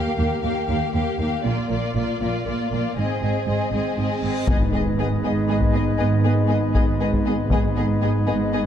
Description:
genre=cinematic, epic orchestral film score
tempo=79 BPM (dotted quarters)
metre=12/8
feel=straight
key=G# minor from 4.5 s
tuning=A4 = 439 Hz
part: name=warm symphonic violin section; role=melody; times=0.0-8.6 s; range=D5 to F5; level=-30 LUFS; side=left 5 dB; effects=none
part: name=warm symphonic violin section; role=second line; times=0.0-8.6 s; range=F4 to Ab4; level=-30 LUFS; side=left 3 dB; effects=none
part: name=warm symphonic viola section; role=accompaniment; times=0.0-8.6 s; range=Bb3 to C4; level=-28 LUFS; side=right 1 dB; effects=none
part: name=warm symphonic cello section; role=bass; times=0.2-8.7 s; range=Eb2 to Bb2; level=-26 LUFS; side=right 3 dB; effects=none
part: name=warm symphonic double bass section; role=bass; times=0.2-8.7 s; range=Ab1 to Eb2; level=-26 LUFS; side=right 3 dB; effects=none
part: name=reverse cymbal and impact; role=sound effects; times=4.1-7.5 s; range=none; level=-34 LUFS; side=left 1 dB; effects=none
part: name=mellow French horn section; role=sustained chords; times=4.5-8.7 s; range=B3 to D#4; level=-27 LUFS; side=left 4 dB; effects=none
part: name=warm woodwind section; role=sustained chords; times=4.5-8.7 s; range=G#3 to D#5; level=-30 LUFS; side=left 4 dB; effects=none
part: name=taiko ensemble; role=drums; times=4.5-8.0 s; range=none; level=-23 LUFS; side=left 1 dB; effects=none
part: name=timpani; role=percussion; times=4.5-5.2 s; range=G#2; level=-32 LUFS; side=left 1 dB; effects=none
room=moderate scoring stage reverb, RT60 1.6 s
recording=dark, warm production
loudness=-19 LUFS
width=side -9 dB against mid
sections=0.0-4.5 A section; 4.5-8.7 A section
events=reverse cymbal 4.1-4.5; impact 4.5-7.5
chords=0.0 Ebadd9; 1.4 Bb; 3.0 Ab; 4.5 G#m

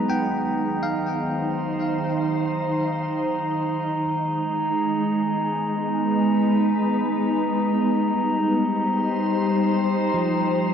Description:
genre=ambient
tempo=61 BPM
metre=4/4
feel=straight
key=unclear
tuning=A4 = 440 Hz
part: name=glassy FM pad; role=sustained chords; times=0.0-10.7 s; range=Eb3 to C5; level=-22 LUFS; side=equal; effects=ensemble chorus, built-in reverb
part: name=bell-like tine electric piano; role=arpeggios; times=0.0-4.1, 10.1-10.7 s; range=E#3 to G5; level=-30 LUFS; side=equal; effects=medium stereo tremolo, diffuse ambient delay
part: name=glass harmonica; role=texture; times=0.0-10.7 s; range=A#5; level=-28 LUFS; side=left 1 dB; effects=none
room=wet cathedral reverb, RT60 6.7 s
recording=dreamy mix soaked in reverb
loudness=-20 LUFS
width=side -8 dB against mid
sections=0.0-10.7 A section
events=fade-in on ambient pad 0.0-10.7; fade-in on tine electric piano 0.0-10.7; fade-in on glass harmonica 0.0-10.7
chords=0.1 Cm; 4.0 G#m; 8.0 Cm

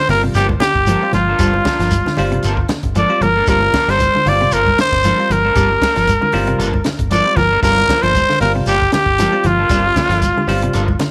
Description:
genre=afrobeat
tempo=116 BPM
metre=4/4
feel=swing 55% on 16ths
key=G minor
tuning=A4 = 439 Hz
part: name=growling trumpet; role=melody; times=0.0-11.0 s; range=F4 to D5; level=-17 LUFS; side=equal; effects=none
part: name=barky tine electric piano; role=accompaniment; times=0.0-10.8 s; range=G3 to G4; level=-26 LUFS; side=equal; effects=phaser
part: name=clean electric guitar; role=arpeggios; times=0.0-11.1 s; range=C3 to G3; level=-26 LUFS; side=equal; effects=tape echo
part: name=electric guitar at the edge of break-up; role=stabs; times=0.1-11.0 s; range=F3 to A4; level=-30 LUFS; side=equal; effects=lush chorus, tape echo
part: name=fingered electric bass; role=bass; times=0.1-10.9 s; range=G1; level=-23 LUFS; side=equal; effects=none
part: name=compact cocktail drum kit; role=drums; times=0.1-11.1 s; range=hi-hat, kick drum, snare drum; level=-25 LUFS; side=equal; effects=none
part: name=congas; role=percussion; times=0.1-11.1 s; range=none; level=-26 LUFS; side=equal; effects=none
part: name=shekere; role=percussion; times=0.1-11.1 s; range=none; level=-27 LUFS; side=equal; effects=none
room=light reverb, studio reverb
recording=none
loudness=-15 LUFS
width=mono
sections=0.0-11.1 A section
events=none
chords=0.0 Gm9

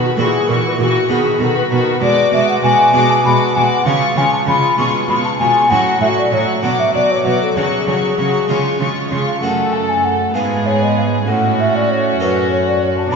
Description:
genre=classical, baroque-style concerto movement with solo episodes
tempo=65 BPM (dotted quarters)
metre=6/8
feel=straight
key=F# minor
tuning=A4 = 440 Hz
part: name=mellow hollow baroque flute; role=melody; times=0.0-13.2 s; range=F#4 to C#6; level=-16 LUFS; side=left 2 dB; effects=none
part: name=warm chamber violin section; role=melody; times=0.0-13.2 s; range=F#4 to D6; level=-24 LUFS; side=left 3 dB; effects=none
part: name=rich studio violin section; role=second line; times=0.0-13.2 s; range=E#4 to A4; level=-22 LUFS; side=left 2 dB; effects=none
part: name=harpsichord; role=accompaniment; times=0.0-13.2 s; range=F#2 to D5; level=-22 LUFS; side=right 1 dB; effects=none
part: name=warm chamber viola section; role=accompaniment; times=0.0-13.2 s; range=D#3 to D4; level=-22 LUFS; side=right 2 dB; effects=none
part: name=rich chamber cello section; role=bass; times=0.2-13.2 s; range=F#2 to C#3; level=-20 LUFS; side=right 3 dB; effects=none
room=wet church reverb, RT60 3.4 s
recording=recorded in a church or concert hall, nothing above 7.6 kHz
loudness=-12 LUFS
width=side -5 dB against mid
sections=0.0-9.4 A section; 9.4-13.2 A section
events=none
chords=0.2 F#7/A#; 1.1 B; 2.0 G#m7b5/B; 3.9 C#; 4.8 C#7/B; 5.7 F#m/A; 6.6 Bm; 7.6 C#sus4; 8.5 C#; 9.4 F#m; 10.3 G#m6; 11.3 F#m/A

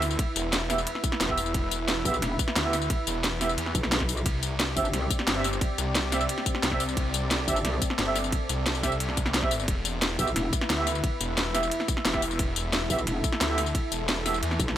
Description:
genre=dark technical drum and bass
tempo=177 BPM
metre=4/4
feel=straight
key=E minor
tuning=A4 = 439 Hz
part: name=dark analog pad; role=sustained chords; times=0.0-14.8 s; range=C4 to E5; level=-33 LUFS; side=equal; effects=chorus, sidechain pumping
part: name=warm brass ensemble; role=stabs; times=0.0-14.4 s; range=B3 to E5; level=-32 LUFS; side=right 3 dB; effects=dub echo
part: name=snarling distorted saw bass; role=bass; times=0.0-14.6 s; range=E1 to E2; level=-31 LUFS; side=equal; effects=distortion, tube saturation, sidechain pumping
part: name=drum and bass drum kit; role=drums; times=0.0-14.7 s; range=hi-hat, ride cymbal, snare drum, tambourine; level=-28 LUFS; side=left 1 dB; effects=none
part: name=electronic kick drum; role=drums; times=0.2-14.7 s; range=none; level=-30 LUFS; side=equal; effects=none
part: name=metallic wobble bass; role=bass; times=2.1-5.1, 7.5-7.8, 10.2-10.5, 12.9-14.8 s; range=E1 to C2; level=-29 LUFS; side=equal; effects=chorus, tube saturation
room=light reverb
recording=none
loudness=-24 LUFS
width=side -11 dB against mid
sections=0.0-14.8 A section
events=none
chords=0.0 Em; 4.3 C; 9.7 Em

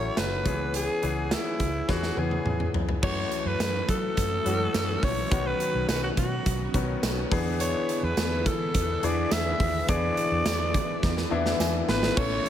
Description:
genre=1980s-style pop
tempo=105 BPM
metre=4/4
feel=straight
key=unclear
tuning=A4 = 445 Hz
part: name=raspy alto saxophone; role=melody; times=0.0-12.5 s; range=E4 to E5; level=-30 LUFS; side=equal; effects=none
part: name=clear grand piano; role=accompaniment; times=0.0-12.5 s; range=D#3 to B5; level=-31 LUFS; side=left 5 dB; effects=none
part: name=vintage muted fingered electric bass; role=bass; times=0.0-12.4 s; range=F#1 to F#3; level=-31 LUFS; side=right 1 dB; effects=none
part: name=big rock drum kit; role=drums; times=0.2-12.5 s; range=crash cymbal, hi-hat, kick drum, snare drum, toms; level=-29 LUFS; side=right 1 dB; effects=gated reverb
part: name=string machine, violins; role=sustained chords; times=3.0-12.5 s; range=D3 to F#4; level=-34 LUFS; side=right 1 dB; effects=ensemble chorus
part: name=tambourine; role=percussion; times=3.6-11.7 s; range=none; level=-42 LUFS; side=right 10 dB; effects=none
part: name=marimba with medium mallets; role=second line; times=11.9-12.5 s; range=B3 to C#4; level=-34 LUFS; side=right 1 dB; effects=none
room=light reverb, small room ambience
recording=none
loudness=-24 LUFS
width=side -10 dB against mid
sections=0.0-3.0 A section; 3.0-12.2 B section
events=drum fill 1.9-3.0, 11.0-12.2; grand piano fill 11.0-12.2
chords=0.5 C#m7; 1.9 E6; 3.0 F#m7; 5.3 Badd9; 7.3 E7

